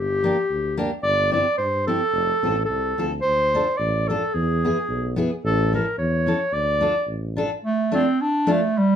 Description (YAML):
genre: alpine folk, alpine dance band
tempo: 109 BPM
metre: 2/4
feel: swing 55% on 8ths, rubato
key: D minor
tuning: A4 = 440 Hz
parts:
  - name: warm clarinet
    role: melody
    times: 0.0-9.0 s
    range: G3 to D5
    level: -21 LUFS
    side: right 1 dB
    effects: none
  - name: mellow tuba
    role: bass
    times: 0.0-7.4 s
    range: F1 to G2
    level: -26 LUFS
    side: equal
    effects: none
  - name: fingerpicked steel-string acoustic guitar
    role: accompaniment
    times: 0.2-8.6 s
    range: A3 to A4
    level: -24 LUFS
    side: left 2 dB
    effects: none
room: wet studio ambience, RT60 0.5 s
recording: band playing live in one room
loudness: -20 LUFS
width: side -9 dB against mid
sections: 0.0-7.6 A section; 7.6-9.0 A section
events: none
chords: 0.0 Gm; 1.0 C/G; 2.1 F; 3.2 Dm7; 4.4 E; 5.4 A; 6.5 Dm